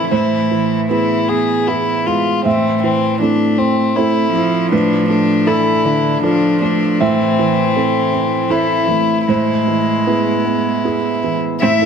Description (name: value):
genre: neoclassical piano and strings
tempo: 78 BPM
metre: 3/4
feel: rubato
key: A harmonic minor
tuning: A4 = 440 Hz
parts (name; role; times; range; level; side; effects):
- warm violin; melody; 0.0-11.9 s; C4 to E5; -17 LUFS; left 5 dB; none
- rich cello; second line; 0.0-11.9 s; D3 to E4; -21 LUFS; right 3 dB; none
- felt-muted upright piano; accompaniment; 0.0-11.9 s; A2 to E5; -16 LUFS; right 3 dB; none
- warm viola; accompaniment; 11.6-11.7 s; C4; -19 LUFS; right 2 dB; none
room: moderate recital hall reverb, RT60 1.2 s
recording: none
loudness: -13 LUFS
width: side -6 dB against mid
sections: 0.0-11.6 A section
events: none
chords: 0.1 E/A; 2.5 Am; 4.7 Dm/A; 7.0 Am; 9.3 E/A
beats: | 0.12 0.90 1.68 | 2.45 3.21 3.97 | 4.72 5.47 6.23 | 7.01 7.75 8.50 | 9.29 10.07 10.84 | 11.62